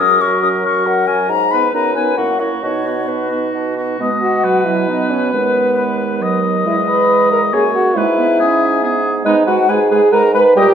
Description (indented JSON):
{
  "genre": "quick classical-period movement for wind quintet",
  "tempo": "137 BPM",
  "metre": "3/4",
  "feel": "rubato",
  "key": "B major",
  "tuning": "A4 = 443 Hz",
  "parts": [
    { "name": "mellow silver concert flute", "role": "melody", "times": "0.0-10.7 s", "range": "B4 to D#6", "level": "-19 LUFS", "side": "left 7 dB", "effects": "none" },
    { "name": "warm oboe", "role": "second line", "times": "0.0-10.7 s", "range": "F#4 to D#5", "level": "-19 LUFS", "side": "left 2 dB", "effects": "none" },
    { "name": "clear French horn", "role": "accompaniment", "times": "0.0-10.7 s", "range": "F#3 to B4", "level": "-16 LUFS", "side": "right 1 dB", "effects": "none" },
    { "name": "warm clarinet", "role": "accompaniment", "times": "0.0-10.7 s", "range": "F#3 to F#4", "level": "-23 LUFS", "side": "right 9 dB", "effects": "none" },
    { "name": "mellow bassoon", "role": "bass", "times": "0.0-10.7 s", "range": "D#2 to B2", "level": "-20 LUFS", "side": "right 2 dB", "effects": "none" }
  ],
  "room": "wet recital hall reverb, RT60 1.6 s",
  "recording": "minimal, uncompressed stereo recording",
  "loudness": "-12 LUFS",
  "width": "side -8 dB against mid",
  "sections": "0.0-4.0 A section; 4.0-10.7 B section",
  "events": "none",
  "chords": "0.0 F#; 1.3 G#m; 1.7 B/F#; 2.2 F#7; 2.6 B; 5.3 B/D#; 6.7 E; 8.0 E/G#; 9.3 G#m",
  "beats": "| 0.00 0.43 0.86 | 1.30 1.74 2.18 | 2.63 3.09 3.54 | 4.00 4.45 4.89 | 5.33 5.78 6.22 | 6.66 7.10 7.54 | 7.97 8.40 8.83 | 9.26 9.70 10.13 | 10.56"
}